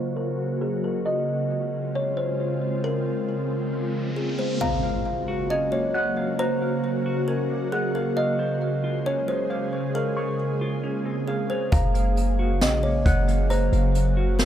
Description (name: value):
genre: hip hop, atmospheric cloud-rap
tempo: 135 BPM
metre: 4/4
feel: half-time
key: Gb lydian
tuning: A4 = 438 Hz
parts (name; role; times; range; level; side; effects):
- kalimba; melody; 0.0-14.4 s; Ab4 to F5; -27 LUFS; equal; low-pass filter, tape echo
- ethereal airy pad; sustained chords; 0.0-14.4 s; Db3 to C5; -27 LUFS; equal; ensemble chorus, built-in reverb, sidechain pumping, low-pass filter
- riser and impact; sound effects; 3.8-6.4 s; none; -33 LUFS; equal; none
- clean electric guitar; arpeggios; 4.6-14.4 s; Ab3 to Db6; -31 LUFS; equal; tape echo
- warm 808-style bass; bass; 11.7-14.4 s; Gb1 to Bb1; -22 LUFS; equal; none
- jazz brush drum kit; drums; 11.7-14.4 s; hi-hat, kick drum, snare drum; -24 LUFS; equal; none
room: light reverb, small room reverb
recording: none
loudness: -22 LUFS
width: side -10 dB against mid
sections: 0.0-4.6 A section; 4.6-14.4 B section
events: filter sweep 0.0-4.6; riser 3.8-4.6; impact 4.6-6.4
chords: 0.0 Gb; 1.1 Dbmaj7; 4.6 Gbmaj7; 8.2 Dbmaj7; 11.7 Gbmaj7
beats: 0.17 0.61 | 1.06 1.50 1.95 2.39 | 2.84 3.28 3.73 4.17 | 4.61 5.06 5.50 5.95 | 6.39 6.84 7.28 7.72 | 8.17 8.61 9.06 9.50 | 9.95 10.39 10.84 11.28 | 11.72 12.17 12.61 13.06 | 13.50 13.95 14.39